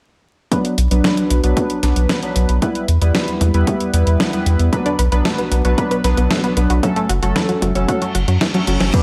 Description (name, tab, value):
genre	italo disco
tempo	114 BPM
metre	4/4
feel	straight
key	B minor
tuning	A4 = 439 Hz
part	chorused polysynth	stabs	0.5-9.0 s	F#3 to B4	-22 LUFS	equal	digital delay
part	clean 12-bit digital drum machine	drums	0.5-9.0 s	crash cymbal, hi-hat, snare drum	-24 LUFS	equal	small room ambience, gated reverb
part	electronic kick drum	drums	0.5-9.0 s	none	-24 LUFS	equal	overdrive, high-pass filter on kick, small room ambience
part	round analog bass	bass	0.8-8.9 s	F#1 to F#2	-18 LUFS	equal	tube saturation
part	analog pluck	arpeggios	4.7-8.9 s	E3 to B4	-24 LUFS	equal	chorus, digital delay
part	reverse cymbal	sound effects	8.1-8.9 s	none	-29 LUFS	equal	none
part	warm analog pad	sustained chords	8.9-9.0 s	B4 to D6	-29 LUFS	equal	chorus
room	light reverb, digital ambience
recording	vinyl crackle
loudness	-17 LUFS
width	mono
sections	0.5-8.9 A section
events	filter sweep on analog polysynth 0.5-8.9; reverse cymbal 8.1-8.9; drum fill 8.4-8.9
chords	0.5 Bm; 2.6 Em; 4.7 Bm; 6.8 F#m